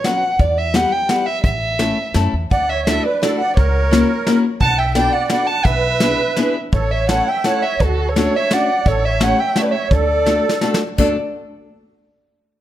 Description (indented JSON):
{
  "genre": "musette waltz",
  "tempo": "170 BPM",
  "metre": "3/4",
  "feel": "rubato",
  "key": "D major",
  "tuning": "A4 = 440 Hz",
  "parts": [
    { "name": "dark violin", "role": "melody", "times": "0.0-11.2 s", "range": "A4 to A5", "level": "-19 LUFS", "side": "right 1 dB", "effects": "none" },
    { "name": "soft brush drum kit", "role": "drums", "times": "0.0-11.1 s", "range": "crash cymbal, hi-hat, kick drum, snare drum", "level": "-20 LUFS", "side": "equal", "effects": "none" },
    { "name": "picked old ladder-braced acoustic guitar", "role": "accompaniment", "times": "0.1-11.2 s", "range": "F#3 to A4", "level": "-20 LUFS", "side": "left 4 dB", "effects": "none" },
    { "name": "upright bass", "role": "bass", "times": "0.4-11.2 s", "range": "A1 to F#2", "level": "-20 LUFS", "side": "equal", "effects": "none" },
    { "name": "musette accordion", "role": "second line", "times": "2.5-11.2 s", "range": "F#4 to F#5", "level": "-22 LUFS", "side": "right 6 dB", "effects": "none" }
  ],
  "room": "light reverb",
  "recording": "none",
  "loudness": "-14 LUFS",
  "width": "side -12 dB against mid",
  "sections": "0.0-11.0 A section; 11.0-12.1 B section",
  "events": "drum fill 10.3-11.0",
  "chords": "0.4 Em; 1.4 A; 2.5 Dadd9; 3.6 F#7/C#; 4.6 Bm7; 5.7 E7/B; 6.7 A; 7.8 Dmaj7; 8.9 A7; 9.9 D"
}